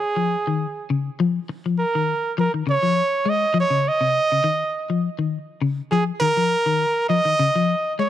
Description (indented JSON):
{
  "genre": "afrobeat",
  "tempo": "102 BPM",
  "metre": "4/4",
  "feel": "swing 54% on 16ths",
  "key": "Bb minor",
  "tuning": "A4 = 440 Hz",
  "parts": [
    { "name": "clear trumpet", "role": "melody", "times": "0.0-8.1 s", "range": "Ab4 to Eb5", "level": "-20 LUFS", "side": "right 2 dB", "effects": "tape echo" },
    { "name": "electric guitar at the edge of break-up", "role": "arpeggios", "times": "0.2-8.1 s", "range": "C3 to Ab3", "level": "-22 LUFS", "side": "left 5 dB", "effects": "tremolo" }
  ],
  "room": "studio reverb",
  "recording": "dry, close 1970s-style studio recording",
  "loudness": "-19 LUFS",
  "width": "side -11 dB against mid",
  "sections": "0.0-8.1 A section",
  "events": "none",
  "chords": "0.0 Bbmadd11 (rootless)",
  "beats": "0.01 0.60 | 1.19 1.78 2.37 2.96 | 3.55 4.14 4.73 5.32 | 5.91 6.50 7.09 7.68"
}